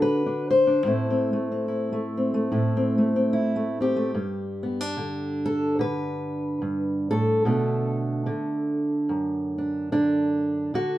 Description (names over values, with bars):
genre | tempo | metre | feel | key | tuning
folk, solo fingerstyle acoustic guitar | 73 BPM | 4/4 | swing 59% on 8ths | unclear | A4 = 440 Hz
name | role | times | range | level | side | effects
fingerpicked steel-string acoustic guitar | solo | 0.0-11.0 s | F#2 to C5 | -22 LUFS | equal | none
room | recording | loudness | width
moderate studio reverb, RT60 0.6 s | band playing live in one room | -22 LUFS | side -14 dB against mid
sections
0.0-4.1 A section; 4.1-11.0 B section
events
none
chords
0.0 N.C.; 0.8 Am; 4.1 G; 7.4 Bm7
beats
0.02 | 0.85 1.67 2.50 3.32 | 4.14 4.97 5.79 6.62 | 7.44 8.26 9.08 9.91 | 10.73